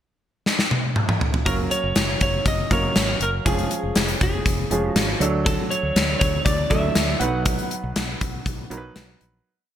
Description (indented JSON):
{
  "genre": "1980s-style pop",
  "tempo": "120 BPM",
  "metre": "4/4",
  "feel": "straight",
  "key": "unclear",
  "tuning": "A4 = 440 Hz",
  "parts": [
    { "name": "gated 80s drum kit", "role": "drums", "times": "0.5-9.3 s", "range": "hi-hat, kick drum, snare drum, toms", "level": "-21 LUFS", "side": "left 1 dB", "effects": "gated reverb" },
    { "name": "lightly driven lead guitar", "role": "melody", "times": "1.5-9.2 s", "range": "G#4 to F#5", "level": "-26 LUFS", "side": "right 1 dB", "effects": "none" },
    { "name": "clear concert grand piano", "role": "accompaniment", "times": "1.5-9.5 s", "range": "E#3 to B4", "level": "-27 LUFS", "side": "right 3 dB", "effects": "none" },
    { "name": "fretless electric bass", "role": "bass", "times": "1.5-9.4 s", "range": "E#1 to D2", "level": "-27 LUFS", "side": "equal", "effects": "none" }
  ],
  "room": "light reverb, studio reverb",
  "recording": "bright 1980s-style digital production",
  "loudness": "-19 LUFS",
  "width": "side -10 dB against mid",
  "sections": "0.0-1.5 pickup bar; 1.5-9.5 verse",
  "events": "drum fill 0.5-1.5; fade-out 7.5-9.5",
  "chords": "0.0 N.C.; 1.5 F#; 3.5 C#/E#; 5.2 D; 7.2 B"
}